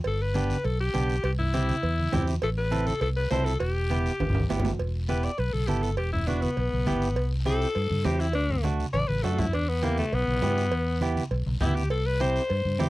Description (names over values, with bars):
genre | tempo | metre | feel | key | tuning
latin, cumbia | 202 BPM | 4/4 | straight | E minor | A4 = 439 Hz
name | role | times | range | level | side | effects
cowbell and timbales | percussion | 0.0-12.9 s | none | -35 LUFS | right 5 dB | none
raspy alto saxophone | melody | 0.1-12.8 s | A3 to D5 | -29 LUFS | left 2 dB | none
fingered electric bass | bass | 0.1-12.9 s | E1 to G2 | -27 LUFS | equal | none
congas | percussion | 0.1-12.9 s | none | -33 LUFS | equal | none
guiro | percussion | 0.1-12.9 s | none | -44 LUFS | left 4 dB | none
clean electric guitar | accompaniment | 0.3-12.9 s | A3 to A4 | -30 LUFS | right 4 dB | none
room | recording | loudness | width
light reverb | dry, close 1970s-style studio recording | -24 LUFS | side -18 dB against mid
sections
0.0-4.8 A section; 4.8-12.9 B section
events
drum fill 3.9-4.8, 8.9-9.5; alto saxophone solo 4.8-12.9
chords
0.1 G; 1.2 C; 2.4 Am; 3.6 Em; 7.2 C; 8.4 D; 9.5 Em; 11.9 C